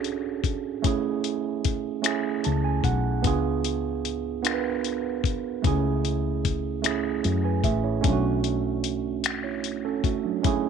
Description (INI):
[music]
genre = slow six-eight R&B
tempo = 50 BPM (dotted quarters)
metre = 6/8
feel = straight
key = F# minor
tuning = A4 = 440 Hz
[part]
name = tine electric piano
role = accompaniment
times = 0.0-10.7 s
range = F#3 to A5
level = -26 LUFS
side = right 10 dB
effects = overdrive
[part]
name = woody fretless electric bass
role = bass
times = 0.0-10.7 s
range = F#1 to F#2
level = -28 LUFS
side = left 3 dB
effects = lush chorus
[part]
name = dusty soul sampler-style drum kit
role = drums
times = 0.0-10.6 s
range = finger snaps, hi-hat, kick drum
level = -27 LUFS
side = left 6 dB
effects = none
[sound]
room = moderate spring reverb, RT60 2.5 s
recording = 1960s-style stereo with parts hard left and right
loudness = -24 LUFS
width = side -6 dB against mid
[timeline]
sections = 0.0-10.7 A section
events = tine electric piano fill 2.0-3.2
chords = 0.0 Bm9; 0.8 F#m9; 3.2 C#7b9; 5.6 F#m9/C#; 8.0 Bm9